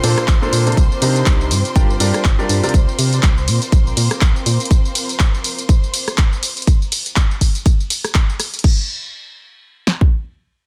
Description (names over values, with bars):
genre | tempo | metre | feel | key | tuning
piano house | 122 BPM | 4/4 | swing 57% on 16ths | unclear | A4 = 440 Hz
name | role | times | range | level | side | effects
warm symphonic violin section | sustained chords | 0.0-6.7 s | C5 to C6 | -31 LUFS | equal | sidechain pumping
bright concert grand piano | riff | 0.0-2.7 s | Bb2 to G5 | -23 LUFS | equal | sidechain pumping, tape echo
organ-like FM bass | bass | 0.0-4.6 s | G1 to C3 | -20 LUFS | equal | sidechain pumping
punchy analog drum machine | drums | 0.0-8.8 s | crash cymbal, handclaps, hi-hat, ride cymbal, rim click, tambourine | -24 LUFS | equal | small room ambience
granular cloud pad | texture | 0.0-4.7 s | C4 to D6 | -33 LUFS | equal | built-in reverb, sidechain pumping
house drum kit | drums | 0.3-10.1 s | kick drum, snare drum | -16 LUFS | equal | small room ambience
room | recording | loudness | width
little or no reverb | dense, heavily limited modern master | -16 LUFS | mono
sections
0.0-8.6 A section; 8.6-10.7 B section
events
drop 0.0-8.6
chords
0.0 Bbmaj9; 0.8 Cm9; 1.5 Gm7; 2.7 Csus2; 3.5 Bbadd9; 4.7 N.C.